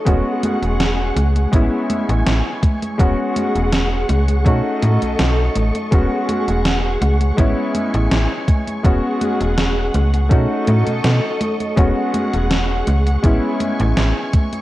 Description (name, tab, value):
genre	vaporwave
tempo	82 BPM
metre	4/4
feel	straight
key	E major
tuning	A4 = 438 Hz
part	warm electric grand piano	accompaniment	0.0-14.6 s	G#3 to F#4	-21 LUFS	left 1 dB	wide subtle chorus, analog delay
part	soft string machine	sustained chords	0.0-14.6 s	G#4 to C#6	-25 LUFS	equal	ensemble chorus
part	slap-like FM bass	bass	0.1-14.1 s	E1 to B2	-18 LUFS	equal	tube saturation
part	electronic kick drum	drums	0.1-14.5 s	none	-15 LUFS	equal	none
part	gated 80s digital drum machine	drums	0.1-14.6 s	congas, hi-hat, snare drum	-22 LUFS	right 1 dB	gated reverb, gated reverb snare
room	light reverb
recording	cassette tape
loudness	-15 LUFS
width	side -16 dB against mid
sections	0.0-14.6 A section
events	none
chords	0.1 E69; 1.5 Amaj7; 3.0 E69; 4.5 B9; 5.9 E69; 7.4 Amaj7; 8.8 E69; 10.3 B9; 11.8 E69; 13.2 Amaj7